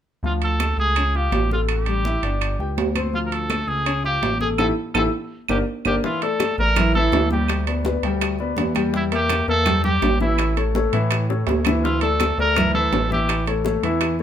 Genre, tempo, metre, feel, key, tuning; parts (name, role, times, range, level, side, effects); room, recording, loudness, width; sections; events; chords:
latin, salsa; 166 BPM; 4/4; straight; D harmonic minor; A4 = 440 Hz
warm upright piano; accompaniment; 0.2-14.2 s; E3 to G5; -24 LUFS; left 4 dB
smooth synth bass; bass; 0.2-14.2 s; G1 to A2; -23 LUFS; right 1 dB
congas; percussion; 0.2-14.2 s; -27 LUFS; right 1 dB
clear trumpet; melody; 0.3-13.5 s; E4 to Bb4; -23 LUFS; right 1 dB
timbales; percussion; 0.4-14.2 s; -28 LUFS; right 9 dB
claves; percussion; 0.6-14.2 s; -30 LUFS; right 6 dB
bongos; percussion; 6.0-14.2 s; -29 LUFS; left 6 dB
moderate large studio reverb, RT60 0.9 s; minimal, uncompressed stereo recording; -18 LUFS; side -9 dB against mid
0.2-6.0 A section; 6.0-14.2 B section
drum fill 4.6-6.0, 11.3-11.8; band accent 4.6-6.0
0.2 Dm; 1.0 C#; 1.7 A5; 2.4 G5; 3.1 Dm; 3.9 C#; 4.6 A5; 5.3 Gm; 6.0 Dsus2; 7.5 G/D; 8.9 Edim; 10.4 A; 11.8 Dsus2; 13.3 A